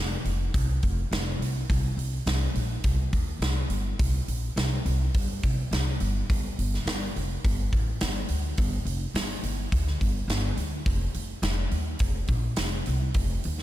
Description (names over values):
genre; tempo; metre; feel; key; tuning
rock, shoegaze and dream pop; 105 BPM; 4/4; straight; G minor; A4 = 440 Hz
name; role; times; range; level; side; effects
upright bass; bass; 0.0-13.6 s; F1 to G2; -27 LUFS; equal; none
big rock drum kit; drums; 0.3-13.6 s; hi-hat, kick drum, snare drum; -28 LUFS; equal; none
room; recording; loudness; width
little or no reverb; none; -25 LUFS; side -14 dB against mid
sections
0.0-13.6 A section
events
none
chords
none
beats
0.54 1.12 | 1.69 2.27 2.84 3.42 | 3.99 4.57 5.14 5.71 | 6.29 6.86 7.43 8.01 | 8.58 9.15 9.72 10.29 | 10.87 11.44 12.01 12.58 | 13.15